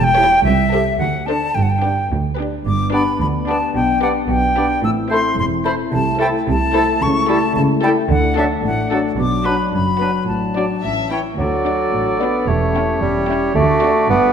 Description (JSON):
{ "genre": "cinematic, playful, whimsical film cue", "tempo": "110 BPM", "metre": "2/4", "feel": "straight", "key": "G major, D major from 7.0 s", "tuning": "A4 = 441 Hz", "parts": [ { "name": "bright silver concert flute", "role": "second line", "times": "0.0-11.1 s", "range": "E5 to E6", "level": "-19 LUFS", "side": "left 1 dB", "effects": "none" }, { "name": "dark chamber double bass section", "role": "bass", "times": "0.0-14.3 s", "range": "E1 to D2", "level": "-23 LUFS", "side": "right 4 dB", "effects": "none" }, { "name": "warm chamber cello section", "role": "bass", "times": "0.0-14.3 s", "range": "C2 to D3", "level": "-24 LUFS", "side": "right 2 dB", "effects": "none" }, { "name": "warm chamber violin section", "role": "melody", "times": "0.2-14.0 s", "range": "A4 to G5", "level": "-29 LUFS", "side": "left 6 dB", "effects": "none" }, { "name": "dark chamber violin section", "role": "second line", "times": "0.2-14.0 s", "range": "E4 to A4", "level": "-29 LUFS", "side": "left 4 dB", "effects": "none" }, { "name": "rich chamber viola section", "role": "accompaniment", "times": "0.2-14.0 s", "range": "C#4 to G4", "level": "-28 LUFS", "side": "right 2 dB", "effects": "none" }, { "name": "mellow French horn section", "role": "sustained chords", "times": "2.7-14.3 s", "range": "E3 to G4", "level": "-23 LUFS", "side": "left 6 dB", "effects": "none" }, { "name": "clear clarinet", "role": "second line", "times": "2.9-14.3 s", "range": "D4 to A4", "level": "-27 LUFS", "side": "left 2 dB", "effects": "none" }, { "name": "clear oboe", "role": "second line", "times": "2.9-14.3 s", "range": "A4 to D5", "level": "-27 LUFS", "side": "right 1 dB", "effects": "none" }, { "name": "warm bassoon", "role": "accompaniment", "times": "2.9-14.3 s", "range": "E3 to B3", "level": "-21 LUFS", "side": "right 2 dB", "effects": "none" } ], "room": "wet scoring stage reverb, RT60 1.6 s", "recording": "none", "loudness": "-15 LUFS", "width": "side -7 dB against mid", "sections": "0.0-2.7 A section; 2.7-11.4 B section; 11.4-14.3 A section", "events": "none", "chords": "0.5 Am7/C; 1.0 D7; 1.6 G; 3.8 G/B; 4.8 Am; 5.9 Am/C; 7.0 A7/C#; 8.1 D; 9.2 Bm; 10.3 D/A; 10.8 A; 11.4 D; 12.5 C#dim/E; 13.6 D" }